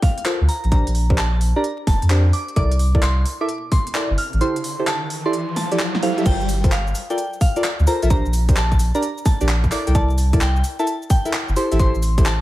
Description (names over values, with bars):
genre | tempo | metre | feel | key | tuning
UK garage, two-step garage | 130 BPM | 4/4 | swing 66% on 16ths | G dorian | A4 = 440 Hz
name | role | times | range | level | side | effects
soft synth bell | melody | 0.0-12.4 s | F5 to F6 | -27 LUFS | equal | chorus, tape echo
electronic kick drum | drums | 0.0-12.2 s | none | -17 LUFS | equal | none
garage drum kit | drums | 0.0-12.4 s | cabasa, crash cymbal, handclaps, hi-hat, snare drum | -27 LUFS | equal | none
deep mellow chord stab | stabs | 0.3-12.3 s | D4 to G5 | -24 LUFS | equal | chorus
soft dub sub bass | bass | 0.4-12.4 s | F1 to F2 | -18 LUFS | equal | none
riser | sound effects | 3.9-6.3 s | none | -28 LUFS | equal | none
room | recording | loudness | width
little or no reverb | vinyl crackle | -17 LUFS | side -16 dB against mid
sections
0.0-6.3 A section; 6.3-12.4 B section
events
riser 3.9-6.3; kick drops out 4.4-6.3; drop 6.3-12.4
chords
0.0 Gm11 (rootless); 0.7 Bb69; 2.3 C13; 4.2 Am7; 6.3 Gm11; 8.1 Bb69; 9.7 C13; 11.6 Am7